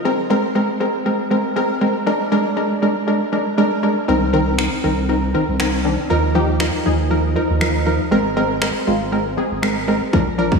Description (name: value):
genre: dance-pop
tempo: 119 BPM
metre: 4/4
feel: straight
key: unclear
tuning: A4 = 440 Hz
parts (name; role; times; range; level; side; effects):
- wavetable chord stab; accompaniment; 0.0-10.5 s; Eb3 to Bb4; -17 LUFS; equal; none
- saturated sub bass; bass; 4.1-10.6 s; Ab1 to Eb2; -22 LUFS; right 1 dB; sidechain pumping
- house drum kit; drums; 4.6-10.6 s; finger snaps, kick drum; -23 LUFS; equal; overdrive
room: wet lush hall reverb, RT60 2.2 s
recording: dreamy mix soaked in reverb, small room ambience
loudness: -16 LUFS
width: side -4 dB against mid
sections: 0.0-10.6 A section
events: none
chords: 0.1 Abadd9; 2.1 Bb7; 4.1 Cm7; 6.1 Ebsus2; 8.1 Abadd9